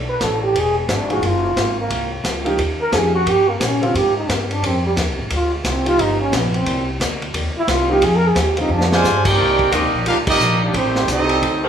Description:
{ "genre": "jazz, big band swing", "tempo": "177 BPM", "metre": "4/4", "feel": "swing 62% on 8ths", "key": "Eb major", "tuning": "A4 = 440 Hz", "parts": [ { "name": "fingerpicked acoustic archtop guitar", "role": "accompaniment", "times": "0.0-11.7 s", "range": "Gb2 to Bb4", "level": "-30 LUFS", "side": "left 6 dB", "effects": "none" }, { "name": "upright bass", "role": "bass", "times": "0.0-11.7 s", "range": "E1 to Bb2", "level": "-22 LUFS", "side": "equal", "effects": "none" }, { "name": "warm trombone", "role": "melody", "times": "0.1-8.9 s", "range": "G3 to B4", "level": "-20 LUFS", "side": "right 1 dB", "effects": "none" }, { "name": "vintage drum kit", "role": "drums", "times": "0.2-11.5 s", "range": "crash cymbal, hi-hat, kick drum, ride cymbal, snare drum", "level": "-23 LUFS", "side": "equal", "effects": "none" }, { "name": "warm baby grand piano", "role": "accompaniment", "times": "1.1-9.0 s", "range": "D3 to G#4", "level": "-24 LUFS", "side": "right 2 dB", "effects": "none" }, { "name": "clear trumpet section", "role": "melody", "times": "8.9-11.7 s", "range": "A3 to Ab5", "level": "-18 LUFS", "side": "equal", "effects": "none" }, { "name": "clear trombone section", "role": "second line", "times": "8.9-11.7 s", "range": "D3 to G4", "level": "-20 LUFS", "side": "right 5 dB", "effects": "none" }, { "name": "mellow saxophone section", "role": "sustained chords", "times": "9.4-11.7 s", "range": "D3 to D5", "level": "-25 LUFS", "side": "left 4 dB", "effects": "none" } ], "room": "moderate plate reverb, RT60 2.4 s", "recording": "rough home demo mix, small room reverb", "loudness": "-15 LUFS", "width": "side -8 dB against mid", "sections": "0.0-9.4 A section; 9.4-11.7 B section", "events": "trombone solo 0.0-9.4; drum fill 8.7-9.0; band accent 10.2", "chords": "0.0 Bm7; 0.5 E9; 1.2 Gbmaj9#11; 2.6 Eb7; 3.9 Abmaj9; 5.3 Dm7b5; 6.0 G7alt; 6.7 Cm7; 8.0 Fm7; 8.7 Bb13; 9.4 Cm9; 10.7 Am7b5", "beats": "0.20 0.54 0.88 | 1.22 1.56 1.91 2.25 | 2.59 2.93 3.27 3.61 | 3.95 4.29 4.63 4.97 | 5.31 5.65 5.99 6.33 | 6.66 7.00 7.34 7.68 | 8.02 8.36 8.70 9.04 | 9.38 9.72 10.06 10.40 | 10.74 11.08 11.42" }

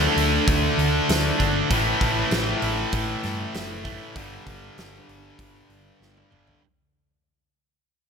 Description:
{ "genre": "hard rock", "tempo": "98 BPM", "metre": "4/4", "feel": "straight", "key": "unclear", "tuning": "A4 = 440 Hz", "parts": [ { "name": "heavy high-gain guitar", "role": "riff", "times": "0.0-6.6 s", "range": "G2 to D4", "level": "-26 LUFS", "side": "right 13 dB", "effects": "distortion" }, { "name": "tight distorted guitar", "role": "riff", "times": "0.0-6.6 s", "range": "G2 to D4", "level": "-26 LUFS", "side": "left 12 dB", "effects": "distortion" }, { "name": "fingered electric bass", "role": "bass", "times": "0.0-6.5 s", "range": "F#1 to G2", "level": "-27 LUFS", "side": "equal", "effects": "none" }, { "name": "huge arena drum kit", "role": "drums", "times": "0.2-6.6 s", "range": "hi-hat, kick drum, snare drum, toms", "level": "-27 LUFS", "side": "equal", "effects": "none" } ], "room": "little or no reverb", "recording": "none", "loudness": "-20 LUFS", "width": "side -6 dB against mid", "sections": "0.0-6.6 A section", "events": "fade-out 0.0-6.6; drum fill 6.0-6.6", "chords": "0.0 D5; 1.7 A5; 4.2 G5", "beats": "0.47 1.08 | 1.70 2.31 2.93 3.54 | 4.16 4.77 5.38 6.00" }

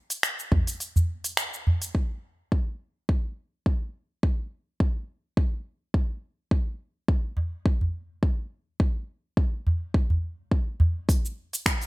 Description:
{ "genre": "downtempo", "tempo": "105 BPM", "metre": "4/4", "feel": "swing 54% on 16ths", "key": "none", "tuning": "none", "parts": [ { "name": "deep house drum kit", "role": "drums", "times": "0.1-1.9, 11.1-11.9 s", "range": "finger snaps, hi-hat, shaker", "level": "-28 LUFS", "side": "equal", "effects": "small room ambience" }, { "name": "electronic kick drum", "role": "drums", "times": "0.5-11.8 s", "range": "none", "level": "-24 LUFS", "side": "equal", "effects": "small room ambience" }, { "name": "udu", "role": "percussion", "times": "0.5-1.8, 7.4-10.9 s", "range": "none", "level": "-23 LUFS", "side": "equal", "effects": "none" } ], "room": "little or no reverb", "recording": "none", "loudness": "-25 LUFS", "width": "side -21 dB against mid", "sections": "0.0-1.9 A section; 1.9-11.1 B section", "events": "kick drops out 0.8-1.9", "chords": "none", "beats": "0.23 0.80 1.38 | 1.95 2.52 3.09 3.66 | 4.23 4.80 5.38 5.95 | 6.52 7.09 7.66 8.23 | 8.80 9.38 9.95 10.52 | 11.09 11.66" }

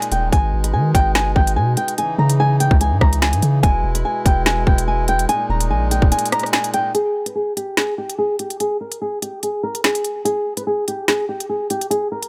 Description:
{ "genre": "hip hop, drill", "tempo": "145 BPM", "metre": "4/4", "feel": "half-time", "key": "unclear", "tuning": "A4 = 440 Hz", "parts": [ { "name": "flamenco guitar", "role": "melody", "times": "0.0-12.3 s", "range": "G4 to B5", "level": "-23 LUFS", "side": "equal", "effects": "low-pass filter" }, { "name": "hand-pumped harmonium", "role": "sustained chords", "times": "0.0-6.9 s", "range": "A#2 to E4", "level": "-30 LUFS", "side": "equal", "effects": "none" }, { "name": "drill drum kit", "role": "drums", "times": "0.0-12.3 s", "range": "hi-hat, kick drum, rim click, snare drum", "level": "-20 LUFS", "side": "equal", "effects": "none" }, { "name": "long sustained 808-style bass", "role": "bass", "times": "0.1-6.1 s", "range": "D#1 to D#3", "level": "-21 LUFS", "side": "equal", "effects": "none" } ], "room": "small room ambience", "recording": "none", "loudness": "-19 LUFS", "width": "mono", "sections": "0.0-6.9 A section; 6.9-12.3 B section", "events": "kick muted 6.1-6.9; break 6.9-12.3", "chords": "0.3 G#m; 2.0 C#madd9; 3.6 E; 5.3 D#sus4; 6.9 N.C.", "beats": "| 0.33 0.74 1.15 1.57 | 1.98 2.39 2.81 3.22 | 3.63 4.05 4.46 4.88 | 5.29 5.70 6.12 6.53 | 6.95 7.36 7.77 8.19 | 8.60 9.01 9.43 9.84 | 10.26 10.67 11.08 11.50 | 11.91" }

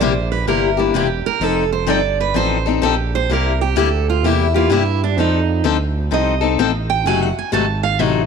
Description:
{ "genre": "acoustic string swing (jazz manouche)", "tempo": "128 BPM", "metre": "4/4", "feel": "swing 65% on 8ths", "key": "unclear", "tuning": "A4 = 439 Hz", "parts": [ { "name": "picked steel-string acoustic guitar", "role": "melody", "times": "0.0-8.3 s", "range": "D4 to A5", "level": "-20 LUFS", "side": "right 11 dB", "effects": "none" }, { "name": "picked steel-string acoustic guitar", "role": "accompaniment", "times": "0.0-8.2 s", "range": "C3 to A4", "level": "-19 LUFS", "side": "left 10 dB", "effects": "none" }, { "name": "smooth synth bass", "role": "bass", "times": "0.0-8.3 s", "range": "E1 to G2", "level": "-20 LUFS", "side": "right 2 dB", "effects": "none" } ], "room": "light reverb, studio ambience", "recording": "1960s-style stereo with parts hard left and right", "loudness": "-15 LUFS", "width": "side -6 dB against mid", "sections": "0.0-8.3 A section", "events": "steel-string acoustic guitar solo 0.0-8.3", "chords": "0.0 C7; 1.4 F7; 3.3 C7; 5.2 F7; 7.1 F#dim7", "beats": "0.00 0.47 0.94 | 1.41 1.88 2.35 2.82 | 3.29 3.76 4.23 4.70 | 5.17 5.64 6.11 6.58 | 7.05 7.53 8.00" }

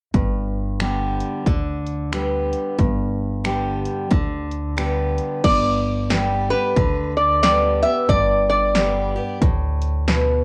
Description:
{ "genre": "honky-tonk and classic country", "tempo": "91 BPM", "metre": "4/4", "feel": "swing 61% on 8ths", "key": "G major", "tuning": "A4 = 440 Hz", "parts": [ { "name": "picked steel-string acoustic guitar", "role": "accompaniment", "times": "0.1-10.4 s", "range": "G2 to G4", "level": "-27 LUFS", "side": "equal", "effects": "none" }, { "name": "upright bass", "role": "bass", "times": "0.1-10.4 s", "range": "G1 to D2", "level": "-26 LUFS", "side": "equal", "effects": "none" }, { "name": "punchy analog drum machine", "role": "drums", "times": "0.1-10.3 s", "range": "crash cymbal, finger snaps, hi-hat, kick drum, snare drum", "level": "-24 LUFS", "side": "equal", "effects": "cassette tape" }, { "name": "lap resonator guitar", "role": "melody", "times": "5.4-9.4 s", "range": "B4 to E5", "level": "-21 LUFS", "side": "equal", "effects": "cassette tape" } ], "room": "light reverb", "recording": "home recording on cassette", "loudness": "-20 LUFS", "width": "mono", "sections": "0.1-5.4 A section; 5.4-10.4 B section", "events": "none", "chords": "0.1 G; 5.4 Gadd9", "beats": "| 0.14 0.80 1.46 2.13 | 2.79 3.45 4.11 4.78 | 5.44 6.10 6.76 7.43 | 8.09 8.75 9.41 10.08" }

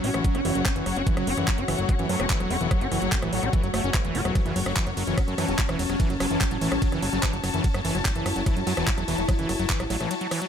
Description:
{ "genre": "psychedelic trance", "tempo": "146 BPM", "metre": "4/4", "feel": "straight", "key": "F# minor", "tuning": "A4 = 440 Hz", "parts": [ { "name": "evolving wavetable pad", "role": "sustained chords", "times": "0.0-10.5 s", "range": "F#3 to E4", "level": "-30 LUFS", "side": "left 1 dB", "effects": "chorus, built-in reverb, sidechain pumping" }, { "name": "overdriven acid bass", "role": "riff", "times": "0.0-10.5 s", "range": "E3 to F#4", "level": "-30 LUFS", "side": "right 1 dB", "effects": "distortion, auto-pan, cassette tape, sidechain pumping, tape echo" }, { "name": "fat analog bass", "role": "bass", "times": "0.0-10.1 s", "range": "E1 to F#2", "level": "-30 LUFS", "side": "equal", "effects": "none" }, { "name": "garage drum kit", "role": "drums", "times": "0.0-10.5 s", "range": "handclaps, hi-hat, ride cymbal, rim click", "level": "-31 LUFS", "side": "equal", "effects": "none" }, { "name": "rich studio string section", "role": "texture", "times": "0.0-10.5 s", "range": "F#4 to A5", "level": "-31 LUFS", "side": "left 4 dB", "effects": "sidechain pumping" }, { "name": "electronic kick drum", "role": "drums", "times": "0.2-9.8 s", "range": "none", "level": "-25 LUFS", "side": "equal", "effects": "none" }, { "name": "vowel-sweep wobble bass", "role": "second line", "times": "0.5-10.1 s", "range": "E3 to B3", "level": "-40 LUFS", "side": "right 2 dB", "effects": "wide subtle chorus, sidechain pumping, high-pass filter, digital delay" } ], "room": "little or no reverb", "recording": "none", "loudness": "-22 LUFS", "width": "side -8 dB against mid", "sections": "0.0-10.5 A section", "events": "none", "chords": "0.0 F#5", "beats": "0.24 0.66 | 1.07 1.48 1.89 2.30 | 2.71 3.12 3.53 3.94 | 4.35 4.76 5.18 5.59 | 6.00 6.41 6.82 7.23 | 7.64 8.05 8.46 8.87 | 9.29 9.70 10.11" }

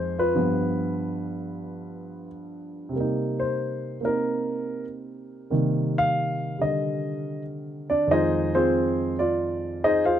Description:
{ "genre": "solo jazz", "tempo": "93 BPM", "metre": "4/4", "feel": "swing 69% on 8ths", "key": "C minor", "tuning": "A4 = 440 Hz", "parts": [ { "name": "dark grand piano", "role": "solo", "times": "0.0-10.2 s", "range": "F2 to F5", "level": "-23 LUFS", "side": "equal", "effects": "none" } ], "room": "light reverb", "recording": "dark, warm production", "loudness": "-23 LUFS", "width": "side -10 dB against mid", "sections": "0.0-2.9 A section; 2.9-10.2 B section", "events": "grand piano solo 2.9-10.2", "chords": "0.4 G7; 2.9 Cm7; 8.1 Fm7", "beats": "| 0.36 1.00 1.65 2.29 | 2.94 3.58 4.22 4.87 | 5.51 6.16 6.81 7.45 | 8.10 8.74 9.39 10.04" }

